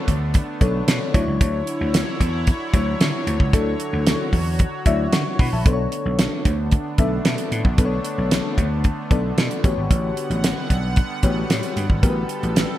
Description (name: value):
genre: early-eighties boogie funk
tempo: 113 BPM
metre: 4/4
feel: straight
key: B minor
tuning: A4 = 443 Hz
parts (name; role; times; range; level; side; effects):
- mellow FM electric piano; accompaniment; 0.0-12.8 s; F#3 to C#6; -26 LUFS; left 3 dB; chorus
- lush unison pad; sustained chords; 0.0-12.8 s; D3 to F#5; -29 LUFS; equal; chorus
- vintage slap bass; bass; 0.1-12.6 s; G#1 to D3; -23 LUFS; equal; none
- damped 70s drum kit; drums; 0.1-12.7 s; hi-hat, kick drum, snare drum; -19 LUFS; equal; gated reverb
room: light reverb, studio reverb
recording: bright 1980s-style digital production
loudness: -18 LUFS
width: side -13 dB against mid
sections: 0.0-12.8 A section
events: FM electric piano fill 4.6-5.7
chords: 0.0 Bm9; 1.1 Dmaj9; 5.7 Bm9; 9.6 A13